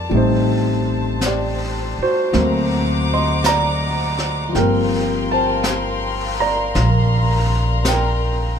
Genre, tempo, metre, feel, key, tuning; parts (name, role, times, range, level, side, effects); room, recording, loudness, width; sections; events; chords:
jazz ballad; 54 BPM; 4/4; swing 68% on 8ths; A4 = 440 Hz
warm grand piano; accompaniment; 0.0-8.6 s; D3 to C6; -19 LUFS; right 1 dB
warm chamber string section; sustained chords; 0.0-8.6 s; Bb4 to D6; -25 LUFS; left 4 dB
upright bass; bass; 0.0-8.6 s; G1 to D2; -20 LUFS; equal
jazz brush drum kit; drums; 0.1-8.6 s; brushed snare drum, hi-hat, snare drum; -28 LUFS; left 1 dB
little or no reverb; lossy compression artefacts; -16 LUFS; side -7 dB against mid
0.0-8.6 A section
0.1 Am7b5; 2.3 D7b13; 4.5 Gm11